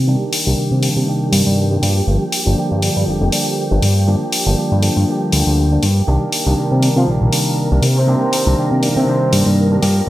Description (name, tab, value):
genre	filtered disco house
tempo	120 BPM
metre	4/4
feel	swing 56% on 16ths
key	C minor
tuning	A4 = 441 Hz
part	string machine, full ensemble	sustained chords	0.0-10.1 s	G4 to Bb5	-26 LUFS	equal	ensemble chorus, vintage 12-bit sampler grit, low-pass filter
part	clean electric guitar	riff	0.0-10.1 s	Eb3 to G4	-24 LUFS	right 2 dB	low-pass filter
part	fat analog bass	bass	0.0-10.0 s	F1 to C3	-15 LUFS	equal	low-pass filter
part	bell-like tine electric piano	accompaniment	0.1-10.1 s	C3 to D4	-19 LUFS	equal	phaser, low-pass filter
part	electronic hi-hat	drums	0.3-9.9 s	none	-21 LUFS	left 2 dB	studio reverb
part	bright horn section	melody	7.0-9.5 s	C3 to F4	-21 LUFS	equal	low-pass filter
room	light reverb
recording	bright 1980s-style digital production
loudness	-13 LUFS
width	side -15 dB against mid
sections	0.0-10.1 A section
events	filter sweep 0.0-10.1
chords	0.0 Cm9; 1.8 Gm7; 6.1 Cm9